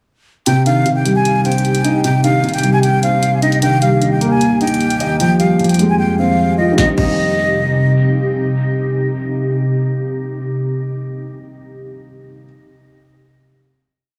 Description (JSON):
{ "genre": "hip hop, trap", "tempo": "152 BPM", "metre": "4/4", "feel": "half-time", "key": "C minor", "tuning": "A4 = 441 Hz", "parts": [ { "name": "breathy mellow silver concert flute", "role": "melody", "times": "0.5-7.9 s", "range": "Eb5 to Ab5", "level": "-21 LUFS", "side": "equal", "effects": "dub echo" }, { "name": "dark concert grand piano", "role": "accompaniment", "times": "0.5-12.5 s", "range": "C3 to Eb5", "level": "-18 LUFS", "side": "equal", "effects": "none" }, { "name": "ethereal airy pad", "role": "sustained chords", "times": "1.0-10.4 s", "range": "C2 to G4", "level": "-21 LUFS", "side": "equal", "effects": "ensemble chorus, built-in reverb" }, { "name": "trap drum kit", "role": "drums", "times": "0.5-7.1 s", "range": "crash cymbal, hi-hat, kick drum, snare drum", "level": "-24 LUFS", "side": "equal", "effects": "none" } ], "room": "moderate spring reverb, RT60 1.8 s", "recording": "echo-heavy mix, small room ambience", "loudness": "-15 LUFS", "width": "mono", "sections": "0.5-6.8 breakdown; 6.8-9.9 final chord", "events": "drums muted 6.0-6.8", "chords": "0.5 Cm; 3.6 Eb; 5.2 Fmadd9; 6.8 Cm", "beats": "| 0.46 0.86 1.25 1.65 | 2.04 2.44 2.83 3.23 | 3.62 4.02 4.41 4.80 | 5.20 5.59 5.99 6.38 | 6.78 7.17 7.57 7.96 | 8.36 8.75 9.15 9.54" }